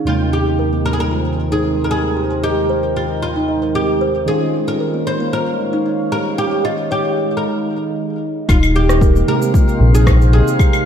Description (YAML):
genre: organic downtempo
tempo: 114 BPM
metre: 4/4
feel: straight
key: unclear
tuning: A4 = 443 Hz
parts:
  - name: bell-like tine electric piano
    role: accompaniment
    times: 0.0-10.9 s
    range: Eb2 to G5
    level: -22 LUFS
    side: right 2 dB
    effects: ensemble chorus, sidechain pumping
  - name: warm analog pad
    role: sustained chords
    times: 0.0-10.9 s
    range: Eb3 to G5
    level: -23 LUFS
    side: equal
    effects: chorus, sidechain pumping
  - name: oud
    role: melody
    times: 0.1-10.8 s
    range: F4 to C5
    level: -20 LUFS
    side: equal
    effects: digital delay
  - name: kalimba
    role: arpeggios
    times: 0.1-10.8 s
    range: Bb3 to Eb5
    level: -21 LUFS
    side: right 1 dB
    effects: digital delay
  - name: round analog bass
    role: bass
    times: 8.5-10.4 s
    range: Eb1 to Bb1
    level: -12 LUFS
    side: equal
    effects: tube saturation
  - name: electronic claves, cabasa and rim click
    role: drums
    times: 8.5-10.8 s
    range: none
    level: -23 LUFS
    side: left 2 dB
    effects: none
  - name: electronic kick drum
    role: drums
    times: 8.5-10.7 s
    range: none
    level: -13 LUFS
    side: left 1 dB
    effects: none
  - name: drifting glass-harmonics texture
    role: texture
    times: 9.2-10.9 s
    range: F5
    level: -27 LUFS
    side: right 2 dB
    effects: chorus, built-in reverb
room: moderate lush hall reverb, RT60 1.9 s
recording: dark, warm production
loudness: -14 LUFS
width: side -8 dB against mid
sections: 0.0-8.5 A section; 8.5-10.9 B section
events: filter sweep on kalimba 0.0-8.5; break 7.4-8.5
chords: 0.1 Abmaj9/Eb; 4.3 Eb9sus4; 8.5 Abmaj9/Eb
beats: | 0.07 0.59 1.12 1.65 | 2.17 2.70 3.22 3.75 | 4.28 4.80 5.33 5.86 | 6.38 6.91 7.43 7.96 | 8.49 9.01 9.54 10.07 | 10.59